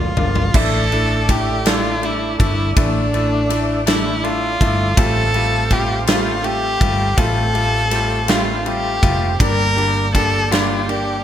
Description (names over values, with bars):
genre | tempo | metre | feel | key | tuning
six-eight pop ballad | 54 BPM (dotted quarters) | 6/8 | straight | unclear | A4 = 440 Hz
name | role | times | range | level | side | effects
warm violin | melody | 0.0-11.2 s | D4 to Bb4 | -20 LUFS | equal | tape echo
bright upright piano | accompaniment | 0.0-11.1 s | G3 to F4 | -24 LUFS | left 5 dB | none
percussive tonewheel organ | sustained chords | 0.0-11.2 s | D3 to D6 | -28 LUFS | right 1 dB | chorus vibrato, slow rotary speaker
woody fretless electric bass | bass | 0.0-11.2 s | F1 to A1 | -21 LUFS | equal | none
huge arena drum kit | drums | 0.2-11.1 s | crash cymbal, kick drum, ride cymbal, snare drum, toms | -20 LUFS | equal | none
direct-recorded clean electric guitar | arpeggios | 0.5-11.2 s | G2 to A4 | -28 LUFS | right 7 dB | lush chorus, tape echo
room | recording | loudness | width
studio reverb | none | -15 LUFS | side -10 dB against mid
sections
0.5-11.2 A section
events
drum fill 0.0-0.5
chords
0.0 Bb/F; 0.5 Asus4; 5.0 Fadd9; 9.4 Gm